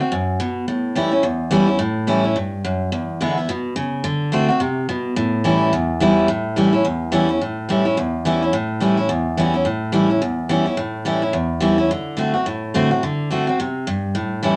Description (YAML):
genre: rock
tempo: 214 BPM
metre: 4/4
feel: swing 59% on 8ths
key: A mixolydian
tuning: A4 = 440 Hz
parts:
  - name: picked steel-string acoustic guitar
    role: solo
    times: 0.0-14.6 s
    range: E2 to F#4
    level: -20 LUFS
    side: equal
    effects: none
room: moderate club reverb, RT60 0.8 s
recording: none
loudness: -20 LUFS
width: mono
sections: 0.0-7.4 A section; 7.4-14.6 B section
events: none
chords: 0.0 D7 (rootless); 0.7 A7; 2.9 E7; 4.0 D7; 5.2 A7; 11.9 D7